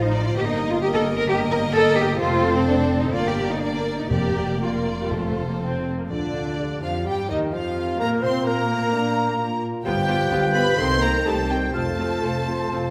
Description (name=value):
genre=quick classical-period movement for symphony orchestra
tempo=118-131 BPM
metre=4/4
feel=rubato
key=unclear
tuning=A4 = 440 Hz
part: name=clear chamber violin section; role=melody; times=0.0-12.9 s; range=C5 to C6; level=-32 LUFS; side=equal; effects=none
part: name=warm chamber violin section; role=second line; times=0.0-12.9 s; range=D4 to C5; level=-32 LUFS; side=equal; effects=none
part: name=rich chamber viola section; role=accompaniment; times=0.0-12.8 s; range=D3 to F4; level=-32 LUFS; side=equal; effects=none
part: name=warm chamber cello section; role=bass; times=0.0-12.9 s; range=D3 to Bb4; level=-28 LUFS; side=equal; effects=none
part: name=warm chamber double bass section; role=bass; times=0.0-12.9 s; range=F1 to C3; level=-30 LUFS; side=equal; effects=none
part: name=timpani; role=percussion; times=4.1-6.8 s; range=F2 to Bb2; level=-31 LUFS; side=equal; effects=none
part: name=clear clarinet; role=second line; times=6.1-12.9 s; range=D4 to C5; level=-34 LUFS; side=equal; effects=none
part: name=mellow flute section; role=second line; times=6.1-12.9 s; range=D5 to G6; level=-32 LUFS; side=equal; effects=none
part: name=dark bassoon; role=accompaniment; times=6.1-12.9 s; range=D3 to C4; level=-31 LUFS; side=equal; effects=none
part: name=warm French horn section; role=sustained chords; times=6.1-12.9 s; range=D4 to A4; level=-33 LUFS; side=equal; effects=none
room=wet scoring stage reverb, RT60 1.8 s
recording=none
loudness=-22 LUFS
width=mono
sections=0.0-6.1 A section; 6.1-12.9 B section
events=none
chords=0.4 Eb/G; 2.2 F; 3.1 Gm; 4.1 Bb/F; 5.1 F; 6.1 Ebmaj9/D; 8.0 Bb; 9.9 G7; 10.8 Cm; 11.7 F